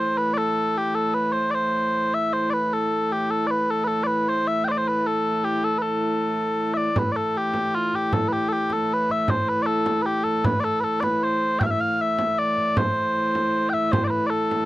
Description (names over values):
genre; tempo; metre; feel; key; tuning
medieval dance; 155 BPM; 3/4; straight; A minor; A4 = 440 Hz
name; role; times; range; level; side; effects
mellow small bagpipes; melody; 0.0-14.7 s; F4 to G5; -22 LUFS; equal; none
rich hurdy-gurdy; drone; 0.0-14.7 s; A2 to E3; -27 LUFS; equal; none
frame drum; percussion; 7.0-14.7 s; none; -26 LUFS; right 1 dB; none
room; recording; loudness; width
light reverb; dry, close 1970s-style studio recording; -20 LUFS; side -16 dB against mid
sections
0.0-7.0 A section; 7.0-14.7 A section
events
none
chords
none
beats
| 0.00 0.38 0.77 | 1.16 1.54 1.93 | 2.32 2.70 3.09 | 3.48 3.87 4.25 | 4.64 5.03 5.41 | 5.80 6.19 6.57 | 6.96 7.35 7.73 | 8.12 8.51 8.89 | 9.28 9.67 10.05 | 10.44 10.83 11.21 | 11.60 11.99 12.38 | 12.76 13.15 13.54 | 13.92 14.31